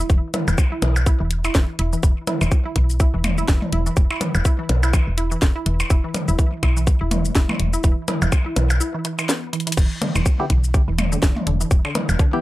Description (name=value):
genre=minimal techno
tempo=124 BPM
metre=4/4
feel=swing 57% on 16ths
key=unclear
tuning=A4 = 440 Hz
part: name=resonant blip pluck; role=riff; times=0.0-12.4 s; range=D3 to E4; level=-27 LUFS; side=right 1 dB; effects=chorus, sidechain pumping, digital delay
part: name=woody FM bass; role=bass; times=0.1-12.2 s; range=E1 to B1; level=-21 LUFS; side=equal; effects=sidechain pumping
part: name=electronic kick drum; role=drums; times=0.1-12.3 s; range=none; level=-17 LUFS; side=equal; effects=none
part: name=garage drum kit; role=drums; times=0.1-12.3 s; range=crash cymbal, hi-hat, shaker, snare drum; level=-26 LUFS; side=left 1 dB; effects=none
part: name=electronic toms and percussion blips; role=percussion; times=0.3-12.2 s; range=none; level=-26 LUFS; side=left 1 dB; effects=tape echo
part: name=percussive organ stab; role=stabs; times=10.4-12.4 s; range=B3 to G4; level=-23 LUFS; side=left 2 dB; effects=chorus, phaser, cassette tape, tape echo
room=little or no reverb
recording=none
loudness=-17 LUFS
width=side -17 dB against mid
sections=0.0-12.4 A section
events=break 8.8-9.8; drum fill 9.5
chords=0.0 E5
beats=| 0.10 0.58 1.06 1.55 | 2.03 2.52 3.00 3.48 | 3.97 4.45 4.94 5.42 | 5.90 6.39 6.87 7.36 | 7.84 8.32 8.81 9.29 | 9.77 10.26 10.74 11.23 | 11.71 12.19